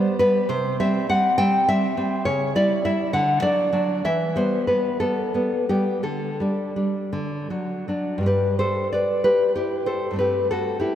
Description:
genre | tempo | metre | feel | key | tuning
romantic piece for solo classical guitar | 51-70 BPM (dotted quarters) | 6/8 | rubato | G major | A4 = 439 Hz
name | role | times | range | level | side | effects
nylon-string guitar | solo | 0.0-10.9 s | G2 to G5 | -20 LUFS | equal | diffuse ambient delay
room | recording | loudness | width
wet lush hall reverb, RT60 2.7 s | dreamy mix soaked in reverb | -20 LUFS | side -10 dB against mid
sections
0.0-8.3 A section; 8.3-10.9 B section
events
none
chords
0.5 C; 2.3 C#dim; 3.1 D; 4.0 Em; 6.0 Dsus4; 7.1 D; 8.3 G; 10.2 Am7/G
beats
| 0.49 1.38 | 2.26 3.12 | 4.04 5.00 | 6.04 7.13 | 8.26 9.24 | 10.19

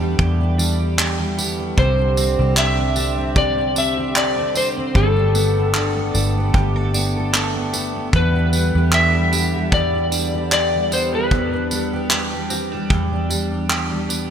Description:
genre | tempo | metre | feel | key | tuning
acoustic pop | 76 BPM | 4/4 | swing 55% on 16ths | E minor | A4 = 442 Hz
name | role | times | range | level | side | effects
electric slide guitar | melody | 0.0-13.5 s | A4 to E5 | -21 LUFS | left 2 dB | digital delay
fingerpicked steel-string acoustic guitar | accompaniment | 0.0-14.3 s | E2 to A4 | -23 LUFS | equal | double-tracked left and right
pedal harmonium | sustained chords | 0.0-11.3 s | D3 to G4 | -30 LUFS | equal | none
direct-recorded clean electric guitar | arpeggios | 0.0-14.3 s | G3 to A4 | -30 LUFS | right 7 dB | analog chorus, digital delay
vintage muted fingered electric bass | bass | 0.0-11.3 s | G1 to E2 | -20 LUFS | equal | none
loose indie drum kit | drums | 0.2-14.3 s | handclaps, kick drum, tambourine | -22 LUFS | equal | none
room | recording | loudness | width
light reverb, small room ambience | bright 1980s-style digital production | -16 LUFS | side -8 dB against mid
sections
0.0-14.3 A section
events
none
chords
0.0 Em7; 1.8 Csus2; 4.9 Gadd9; 8.1 Em7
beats
0.19 0.98 | 1.77 2.57 3.36 4.15 | 4.95 5.74 6.54 7.33 | 8.13 8.92 9.72 10.51 | 11.31 12.11 12.90 13.70

